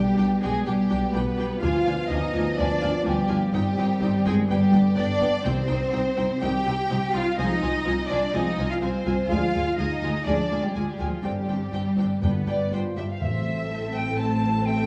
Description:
cinematic; 124 BPM; 4/4; straight; A4 = 440 Hz
warm symphonic violin section; melody; 0.0-14.9 s; C5 to A5; -41 LUFS; equal
warm symphonic violin section; second line; 0.0-14.9 s; F4 to G5; -33 LUFS; equal
dark French horn section; sustained chords; 0.0-13.2 s; B3 to Ab4; -37 LUFS; equal
mellow trombone section; sustained chords; 0.0-12.4 s; B2 to D4; -35 LUFS; equal
dark symphonic cello section; bass; 0.0-14.9 s; A2 to G4; -28 LUFS; equal
warm symphonic double bass section; bass; 0.0-14.9 s; G1 to D2; -31 LUFS; equal
dark symphonic viola section; accompaniment; 0.2-14.9 s; G3 to A4; -35 LUFS; equal
timpani; percussion; 5.5-6.1, 12.2-13.9 s; G2 to C3; -32 LUFS; equal
silver concert flute; second line; 12.5-14.9 s; C5 to A5; -32 LUFS; equal
moderate scoring stage reverb, RT60 1.7 s; -24 LUFS; mono
0.0-13.2 A section; 13.2-14.9 B section
0.0 G/B; 1.6 Ddim; 3.5 Cm/G; 4.5 G; 5.5 Cm; 7.4 Fm7/C; 9.3 Ddim; 11.2 Gsus4; 12.2 G; 13.2 Am

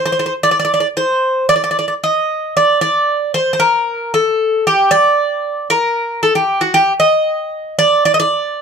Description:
greek folk; 114 BPM; 4/4; straight; A4 = 439 Hz
Greek bouzouki; solo; 0.0-8.6 s; F#4 to Eb5; -12 LUFS; equal
moderate studio reverb, RT60 0.5 s; close, detailed microphones; -12 LUFS; side -6 dB against mid
0.0-3.6 A section; 3.6-8.6 B section

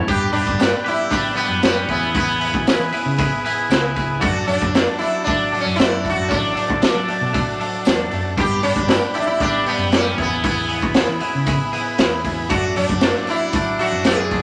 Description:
psychedelic rock; 116 BPM; 4/4; straight; A4 = 441 Hz
overdriven combo organ; sustained chords; 0.0-14.4 s; G4 to D6; -32 LUFS; equal
twangy electric guitar; riff; 0.0-14.4 s; E3 to B4; -25 LUFS; equal
fingered electric bass; bass; 0.0-14.4 s; A1 to F#3; -28 LUFS; equal
sitar; melody; 0.1-14.4 s; B3 to G#4; -24 LUFS; equal
raw garage drum kit; drums; 0.1-14.4 s; hi-hat, kick drum, snare drum; -23 LUFS; equal
tambourine; percussion; 0.6-14.2 s; -42 LUFS; equal
moderate large studio reverb, RT60 0.9 s; -19 LUFS; mono
0.1-14.4 A section
0.1 G; 1.9 E; 4.2 D/F#; 8.4 G; 10.2 E; 12.5 D/F#

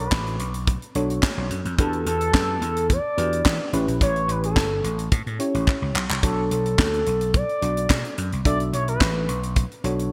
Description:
early-eighties boogie funk; 108 BPM; 4/4; straight; B minor; A4 = 440 Hz
expressive portamento lead; melody; 0.0-9.4 s; A4 to D5; -29 LUFS; equal; chorus, digital delay
mellow FM electric piano; accompaniment; 0.0-10.1 s; C#4 to E5; -31 LUFS; equal; chorus
vintage slap bass; bass; 0.0-10.1 s; G1 to E3; -28 LUFS; equal
tight funk drum kit; drums; 0.1-10.1 s; handclaps, hi-hat, kick drum, snare drum; -25 LUFS; equal; gated reverb
light reverb, small room ambience; bright 1980s-style digital production; -23 LUFS; mono
0.0-10.1 A section
drum fill 5.7-6.2
0.0 Bm9; 1.8 Em9; 3.7 A9; 6.2 Bm9

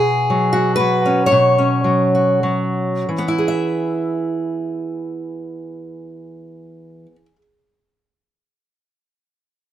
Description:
folk, solo fingerstyle acoustic guitar; 86-130 BPM; 3/4; rubato; E major; A4 = 440 Hz
fingerpicked steel-string acoustic guitar; solo; 0.0-7.4 s; B2 to E5; -16 LUFS; equal
little or no reverb; close, detailed microphones; -15 LUFS; side -11 dB against mid
0.0-3.1 A section; 3.1-7.1 B section
slowing down 0.0-3.1
0.0 Bsus2; 3.1 E

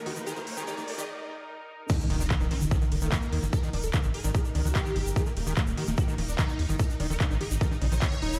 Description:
psychedelic trance; 147 BPM; 4/4; straight; Eb major; A4 = 440 Hz
swarming drone; sustained chords; 0.0-8.4 s; Eb4 to Bb4; -44 LUFS; equal; built-in reverb, vintage 12-bit sampler grit, sidechain pumping
riser and impact; sound effects; 0.0-3.5 s; -36 LUFS; equal
warbly tape-like pad; texture; 0.0-1.1 s; Eb4 to Eb5; -50 LUFS; equal
swarming rave lead; melody; 0.1-8.3 s; Eb3 to Db5; -38 LUFS; equal; chorus, phaser, sidechain pumping, digital delay
screaming distorted acid line; riff; 0.1-8.4 s; Db3 to Fb4; -38 LUFS; equal; distortion, chorus, sidechain pumping, digital delay
round analog bass; bass; 0.1-8.4 s; Eb1 to Eb2; -32 LUFS; equal
techno drum kit; drums; 0.1-8.4 s; crash cymbal, handclaps, hi-hat, ride cymbal; -39 LUFS; equal; overdrive
tube shaker; percussion; 0.2-8.4 s; -45 LUFS; equal
electronic kick drum; drums; 1.9-8.1 s; -29 LUFS; equal
light reverb; played on a big sound system in a bare room, large studio reverb, high-pass filter; -28 LUFS; mono
0.0-1.9 A section; 1.9-8.4 B section
build-up 0.0-1.9; riser 0.0-1.1; filter sweep on digital synth lead 0.0-1.9; break 1.1-1.9; drop 1.9-8.4; impact 1.9-3.5
0.0 Eb5

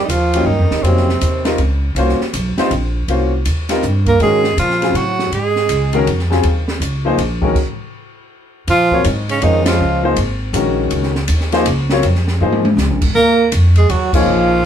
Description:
modal jazz; 161 BPM; 3/4; swing 64% on 8ths; Bb minor from 8.7 s; A4 = 440 Hz
bright tenor saxophone; melody; 0.0-1.6, 4.1-6.0, 8.7-10.0, 13.2-14.7 s; C4 to Bb4; -17 LUFS; right 2 dB
clear trombone; second line; 0.0-1.6, 4.1-6.0, 8.7-10.0, 13.2-14.7 s; C3 to Bb3; -19 LUFS; right 4 dB
upright bass; bass; 0.1-14.6 s; Ab1 to Bb2; -17 LUFS; equal
open jazz drum kit; drums; 0.1-14.2 s; crash cymbal, hi-hat, kick drum, ride cymbal, snare drum, toms; -22 LUFS; equal
clear concert grand piano; accompaniment; 0.3-14.6 s; Db3 to Eb5; -17 LUFS; left 3 dB
moderate studio reverb, RT60 0.6 s; band playing live in one room; -13 LUFS; side -9 dB against mid
0.0-8.7 A section; 8.7-14.7 B section
stop 7.6-8.7; band accent 9.6, 14.1; drum fill 12.4-12.8
0.0 F9sus4; 4.2 Ab9sus4; 8.7 Bbm11; 13.1 Ebm11

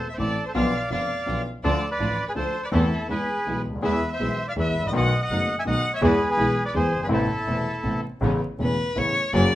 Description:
tango; 164 BPM; 3/4; rubato; A harmonic minor; A4 = 435 Hz
bandoneon; melody; 0.0-8.0 s; E4 to G#5; -26 LUFS; equal
rich violin; second line; 0.0-9.6 s; A4 to G#5; -30 LUFS; left 2 dB
warm concert grand piano; accompaniment; 0.2-9.5 s; E1 to A4; -26 LUFS; left 1 dB
warm studio string section; stabs; 0.2-9.5 s; F#3 to F4; -33 LUFS; right 2 dB
warm double bass; bass; 0.2-9.5 s; E1 to E2; -28 LUFS; right 1 dB
moderate club reverb, RT60 0.8 s; minimal, uncompressed stereo recording, vinyl crackle; -21 LUFS; side -14 dB against mid
0.0-8.2 A section; 8.2-9.6 B section
violin solo 8.2-9.6
0.0 Am; 0.6 Bdim; 1.6 Dm; 2.7 Am/E; 3.1 E; 4.9 B7; 6.0 E; 7.1 Amadd9; 8.2 Aadd9

